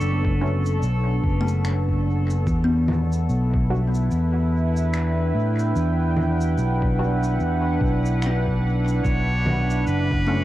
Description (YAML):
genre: ambient dub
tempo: 73 BPM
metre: 4/4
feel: swing 59% on 16ths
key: unclear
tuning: A4 = 437 Hz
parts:
  - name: trumpet with straight mute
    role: melody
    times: 0.0-0.8, 9.0-10.4 s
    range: A4 to C#5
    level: -32 LUFS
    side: equal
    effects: cassette tape, analog delay
  - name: deep dark ambient pad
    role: sustained chords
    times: 0.0-10.4 s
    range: B3 to C#6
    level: -26 LUFS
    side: right 1 dB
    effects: chorus, built-in reverb, cassette tape
  - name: kalimba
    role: arpeggios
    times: 0.0-10.4 s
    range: A3 to D5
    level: -30 LUFS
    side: left 3 dB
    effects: cassette tape, analog delay
  - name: fingered electric bass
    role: bass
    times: 0.0-10.4 s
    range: F#1 to A2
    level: -21 LUFS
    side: equal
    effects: tube saturation
  - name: electronic shaker, finger snaps and congas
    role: drums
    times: 0.0-10.1 s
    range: none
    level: -31 LUFS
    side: equal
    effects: cassette tape, dub echo
  - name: electronic kick drum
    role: drums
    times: 0.2-10.2 s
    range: none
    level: -26 LUFS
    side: equal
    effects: cassette tape
  - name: filtered dub chord stab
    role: stabs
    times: 0.4-10.4 s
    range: D3 to F#4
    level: -34 LUFS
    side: equal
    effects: phaser, cassette tape, dub echo
room: light reverb, digital ambience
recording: home recording on cassette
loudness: -19 LUFS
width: side -15 dB against mid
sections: 0.0-10.4 A section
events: none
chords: 0.0 Bm7; 2.5 Em7; 9.0 Bm7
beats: 0.01 0.83 1.65 | 2.47 3.29 4.11 4.94 | 5.76 6.58 7.40 8.22 | 9.05 9.87